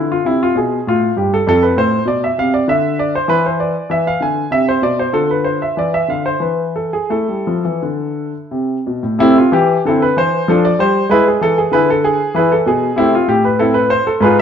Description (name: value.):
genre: classical, baroque-style suite movement for grand piano.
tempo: 83-100 BPM.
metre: 3/4.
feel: rubato.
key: A minor.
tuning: A4 = 442 Hz.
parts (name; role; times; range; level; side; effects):
warm grand piano; solo; 0.0-14.4 s; F2 to Ab5; -13 LUFS; equal; none.
room: wet stone room reverb, RT60 1.0 s.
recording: dark, warm production.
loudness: -13 LUFS.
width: side -8 dB against mid.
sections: 0.0-9.2 A section; 9.2-14.4 B section.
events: none.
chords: 0.0 E5; 0.9 Fadd9; 1.5 F; 2.7 N.C.; 3.3 D(b5, no3); 4.5 Cmaj9; 5.1 Dm; 6.4 N.C.; 7.1 A5; 9.2 Am/C; 10.5 Dm/F; 11.1 E7; 13.0 Am.